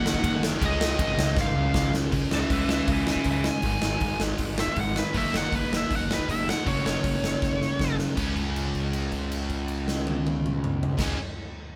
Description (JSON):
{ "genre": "punk rock", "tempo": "159 BPM", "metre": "4/4", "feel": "straight", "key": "unclear", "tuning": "A4 = 440 Hz", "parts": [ { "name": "biting lead guitar", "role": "melody", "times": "0.0-8.0 s", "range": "Cb5 to Ab5", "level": "-32 LUFS", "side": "equal", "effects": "overdrive" }, { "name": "sludgy distorted guitar", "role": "riff", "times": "0.0-11.2 s", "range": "Gb2 to Eb4", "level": "-31 LUFS", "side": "equal", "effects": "overdrive" }, { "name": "fuzz picked electric bass", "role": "bass", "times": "0.1-11.1 s", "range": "Gb1 to Ab2", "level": "-33 LUFS", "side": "equal", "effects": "overdrive" }, { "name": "big rock drum kit", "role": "drums", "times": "0.1-11.1 s", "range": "crash cymbal, hi-hat, kick drum, ride cymbal, snare drum, toms", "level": "-31 LUFS", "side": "equal", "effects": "none" } ], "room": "light reverb", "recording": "band playing live in one room", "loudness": "-26 LUFS", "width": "mono", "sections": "0.0-2.1 A section; 2.1-8.2 B section; 8.2-11.2 C section", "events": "drum fill 1.4-2.1, 7.4-8.2; lead electric guitar solo 2.1-8.2; held note 8.2-11.0", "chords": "0.0 Ebm/Gb; 0.6 Db; 2.1 Db5; 3.6 Ab5; 5.2 Ebm/Gb; 6.7 Gb5; 8.2 Db5", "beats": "0.24 | 0.62 0.99 1.37 1.75 | 2.13 2.51 2.88 3.26 | 3.64 4.02 4.39 4.77 | 5.15 5.53 5.91 6.28 | 6.66 7.04 7.42 7.80 | 8.18 8.56 8.94 9.32 | 9.70 10.08 10.46 10.84" }